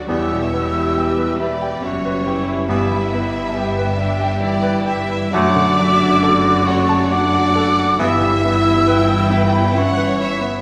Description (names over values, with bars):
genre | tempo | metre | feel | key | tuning
classical | 68 BPM | 3/4 | rubato | unclear | A4 = 440 Hz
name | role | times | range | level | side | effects
clear baby grand piano | melody | 0.0-10.6 s | E2 to B5 | -24 LUFS | equal | none
rich symphonic violin section | melody | 0.0-10.6 s | G4 to E5 | -30 LUFS | equal | none
warm symphonic violin section | second line | 0.0-10.6 s | B4 to G5 | -30 LUFS | equal | none
rich symphonic viola section | accompaniment | 0.0-10.6 s | E3 to G4 | -28 LUFS | equal | none
dark French horn section | sustained chords | 0.0-10.4 s | G3 to E4 | -25 LUFS | equal | none
clear symphonic cello section | bass | 0.0-10.6 s | E2 to G2 | -27 LUFS | equal | none
clear symphonic double bass section | bass | 0.0-10.6 s | E1 to G1 | -28 LUFS | equal | none
clear clarinet | second line | 0.1-8.3 s | A3 to B3 | -28 LUFS | equal | none
mellow hollow small flute group | second line | 0.1-10.4 s | G5 to E6 | -24 LUFS | equal | none
clear bassoon | accompaniment | 0.1-8.3 s | E3 to G3 | -29 LUFS | equal | none
room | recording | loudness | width
wet recital hall reverb, RT60 1.7 s | none | -17 LUFS | mono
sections
0.0-10.6 A section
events
none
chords
0.1 Em; 2.7 Em/G; 5.3 D/F#; 8.0 Em/G